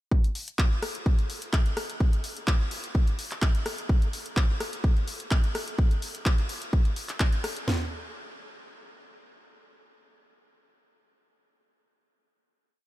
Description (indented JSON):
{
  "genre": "house",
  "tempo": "127 BPM",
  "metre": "4/4",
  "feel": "straight",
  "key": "none",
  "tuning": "none",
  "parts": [
    { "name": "house drum kit", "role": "drums", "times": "0.1-7.8 s", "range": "kick drum, snare drum, toms", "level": "-23 LUFS", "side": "equal", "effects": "none" },
    { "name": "punchy analog drum machine", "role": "drums", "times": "0.2-7.7 s", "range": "handclaps, hi-hat, rim click", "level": "-33 LUFS", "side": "left 1 dB", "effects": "overdrive, sidechain pumping on hats" }
  ],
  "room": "little or no reverb",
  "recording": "none",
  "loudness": "-24 LUFS",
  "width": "side -17 dB against mid",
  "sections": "0.1-7.7 drop; 7.7-11.5 final hit",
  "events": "drop 0.1-7.7",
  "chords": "none"
}